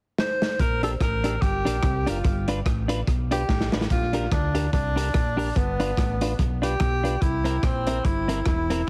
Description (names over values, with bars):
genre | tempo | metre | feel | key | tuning
ska | 145 BPM | 4/4 | swing 57% on 8ths | Bb major | A4 = 439 Hz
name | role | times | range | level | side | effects
breathy tenor saxophone | melody | 0.2-8.9 s | B3 to C5 | -30 LUFS | equal | tape echo
crunchy breakbeat drum kit | drums | 0.2-8.8 s | hi-hat, kick drum, rim click, snare drum | -28 LUFS | equal | tape echo
fingered electric bass | bass | 0.6-8.8 s | E1 to D2 | -30 LUFS | equal | none
clean electric guitar | accompaniment | 0.8-8.8 s | C4 to B4 | -31 LUFS | equal | harmonic tremolo
room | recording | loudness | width
little or no reverb | heavily compressed radio sound | -24 LUFS | mono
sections
0.6-3.9 A section; 3.9-8.9 B section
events
drum fill 0.2-0.6, 3.5-3.9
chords
0.0 N.C.; 0.6 Bb6; 2.2 G7; 3.9 Bb6; 5.6 G7; 7.2 C7